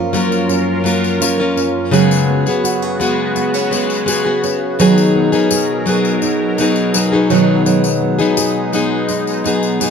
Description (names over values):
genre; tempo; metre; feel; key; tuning
acoustic pop; 84 BPM; 4/4; straight; F# major; A4 = 439 Hz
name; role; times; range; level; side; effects
picked plugged-in steel-string acoustic guitar; accompaniment; 0.0-9.9 s; B2 to A#4; -15 LUFS; left 4 dB; none
sweeping resonant pad; sustained chords; 0.0-9.9 s; F#2 to A#4; -23 LUFS; equal; chorus
nylon-string guitar; arpeggios; 0.0-9.9 s; E#3 to G#4; -18 LUFS; right 8 dB; none
tambourine; percussion; 0.1-9.9 s; none; -23 LUFS; left 7 dB; none
room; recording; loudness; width
light reverb; none; -13 LUFS; side -6 dB against mid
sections
0.0-9.9 A section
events
none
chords
0.0 F#maj7; 1.9 C#7sus4; 4.8 G#m7/B; 7.3 B6